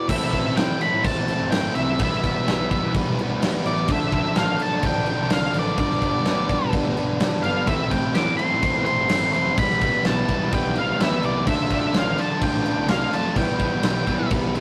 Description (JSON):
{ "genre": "quiet-loud alternative rock", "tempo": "127 BPM", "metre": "4/4", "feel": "straight", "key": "A minor", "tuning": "A4 = 439 Hz", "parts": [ { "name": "octave-fuzz lead guitar", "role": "melody", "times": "0.0-14.3 s", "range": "D5 to D6", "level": "-27 LUFS", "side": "equal", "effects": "distortion" }, { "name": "thick fuzz guitar", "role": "riff", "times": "0.0-14.6 s", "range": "G2 to F4", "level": "-30 LUFS", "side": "equal", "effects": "distortion" }, { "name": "crunchy overdriven guitar", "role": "riff", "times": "0.1-14.6 s", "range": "G2 to F4", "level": "-29 LUFS", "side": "equal", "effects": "none" }, { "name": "fuzz picked electric bass", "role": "bass", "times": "0.1-14.5 s", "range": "E1 to E3", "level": "-33 LUFS", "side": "equal", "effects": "overdrive" }, { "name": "big rock drum kit", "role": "drums", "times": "0.1-14.6 s", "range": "crash cymbal, kick drum, snare drum", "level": "-27 LUFS", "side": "equal", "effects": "none" }, { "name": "fuzz guitar", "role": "riff", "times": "7.7-14.6 s", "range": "A2 to F4", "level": "-33 LUFS", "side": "equal", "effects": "none" } ], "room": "moderate booth ambience, RT60 0.2 s", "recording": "rough rehearsal-room recording", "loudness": "-22 LUFS", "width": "mono", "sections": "0.1-14.6 A section", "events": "none", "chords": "0.1 Am7; 2.0 Em; 3.9 Dm7; 5.8 G; 7.7 Am7; 9.6 Em; 11.5 Dm7; 13.4 Em", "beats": "| 0.09 0.57 1.04 1.52 | 1.99 2.47 2.94 3.42 | 3.89 4.36 4.84 5.31 | 5.78 6.26 6.73 7.20 | 7.68 8.15 8.62 9.10 | 9.57 10.05 10.52 10.99 | 11.47 11.94 12.41 12.89 | 13.36 13.84 14.31" }